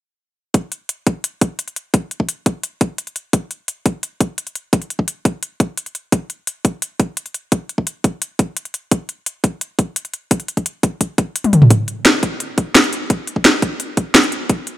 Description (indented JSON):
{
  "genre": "dark technical drum and bass",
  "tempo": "172 BPM",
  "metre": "4/4",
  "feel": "straight",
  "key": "none",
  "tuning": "none",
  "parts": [
    { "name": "drum and bass drum kit", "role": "drums", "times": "0.5-14.7 s", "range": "hi-hat, snare drum, toms", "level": "-15 LUFS", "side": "equal", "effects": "none" },
    { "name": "electronic kick drum", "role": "drums", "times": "0.5-14.6 s", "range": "none", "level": "-15 LUFS", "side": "equal", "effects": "high-pass filter on kick" }
  ],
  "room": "light reverb, digital ambience",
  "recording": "none",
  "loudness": "-16 LUFS",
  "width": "side -14 dB against mid",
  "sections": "0.5-14.8 A section",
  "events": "drum fill 11.4",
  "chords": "none"
}